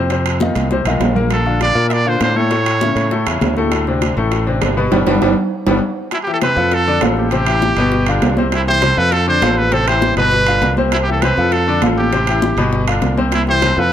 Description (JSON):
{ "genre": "latin, salsa", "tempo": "200 BPM", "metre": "4/4", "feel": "straight", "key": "C major", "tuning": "A4 = 443 Hz", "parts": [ { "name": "bright baby grand piano", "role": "accompaniment", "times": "0.0-13.9 s", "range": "A2 to D5", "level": "-18 LUFS", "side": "left 4 dB", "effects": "none" }, { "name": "modern bright fingered electric bass", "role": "bass", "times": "0.0-13.9 s", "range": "G1 to Bb2", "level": "-19 LUFS", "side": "right 1 dB", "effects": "none" }, { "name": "bongos", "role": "percussion", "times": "0.1-13.9 s", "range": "none", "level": "-26 LUFS", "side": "left 6 dB", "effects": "none" }, { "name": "congas", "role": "percussion", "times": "0.1-13.8 s", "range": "none", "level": "-23 LUFS", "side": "right 1 dB", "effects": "none" }, { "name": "timbales", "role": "percussion", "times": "0.1-13.8 s", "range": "none", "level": "-22 LUFS", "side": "right 5 dB", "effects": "none" }, { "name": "bright trumpet", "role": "melody", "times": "1.3-3.3, 6.1-13.9 s", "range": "E4 to E5", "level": "-17 LUFS", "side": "right 1 dB", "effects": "none" } ], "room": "light reverb", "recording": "none", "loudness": "-13 LUFS", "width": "side -10 dB against mid", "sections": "0.0-6.1 A section; 6.1-13.9 B section", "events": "drum fill 0.6-1.3, 5.4-6.1; band accent 4.9-6.1", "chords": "0.1 F5; 1.3 Bbmaj7; 2.5 A; 3.7 D5; 4.9 G; 6.1 C; 6.7 F6; 7.3 Am7; 7.9 G7; 8.5 C; 9.1 F6; 9.7 Am7; 10.3 G7; 10.9 C; 11.5 F6; 12.1 Am7; 12.7 G7; 13.3 C", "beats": "| 0.10 0.40 0.70 1.01 | 1.31 1.61 1.91 2.21 | 2.51 2.81 3.11 3.41 | 3.71 4.01 4.32 4.62 | 4.92 5.22 5.52 5.82 | 6.12 6.42 6.72 7.02 | 7.32 7.62 7.92 8.22 | 8.52 8.82 9.12 9.42 | 9.72 10.02 10.32 10.62 | 10.92 11.22 11.52 11.82 | 12.12 12.42 12.72 13.02 | 13.32 13.62 13.92" }